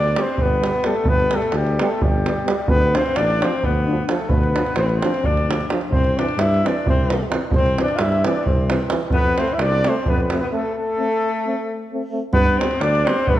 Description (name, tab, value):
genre	balkan folk, Balkan brass band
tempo	261 BPM (eighths)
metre	7/8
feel	straight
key	unclear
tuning	A4 = 444 Hz
part	mellow flugelhorn	melody	0.0-13.4 s	G4 to F5	-22 LUFS	equal	none
part	warm alto saxophone	second line	0.0-13.4 s	G3 to F4	-25 LUFS	left 4 dB	none
part	mellow tuba	bass	0.0-13.4 s	G1 to G2	-23 LUFS	equal	none
part	davul	percussion	0.0-13.4 s	none	-22 LUFS	right 2 dB	none
part	clear euphonium	accompaniment	0.2-13.2 s	E3 to A3	-28 LUFS	right 4 dB	none
part	warm euphonium	accompaniment	0.2-13.2 s	B3 to D4	-30 LUFS	left 4 dB	none
room	moderate concert hall reverb, RT60 1.8 s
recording	none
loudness	-17 LUFS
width	side -13 dB against mid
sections	0.0-12.3 A section; 12.3-13.4 A section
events	break 10.7-12.3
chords	0.0 G; 2.7 Dm; 5.9 C; 9.1 F; 10.7 Am; 12.3 G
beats	0.12 0.35 0.58 0.81 | 1.05 1.28 1.51 1.74 1.97 2.21 2.44 | 2.67 2.90 3.13 3.36 3.59 3.83 4.06 | 4.29 4.52 4.75 4.98 5.21 5.44 5.67 | 5.90 6.13 6.36 6.59 6.82 7.05 7.28 | 7.51 7.74 7.97 8.20 8.43 8.66 8.89 | 9.12 9.35 9.58 9.81 10.04 10.27 10.50 | 10.73 10.96 11.19 11.42 11.65 11.88 12.10 | 12.33 12.56 12.79 13.02 13.25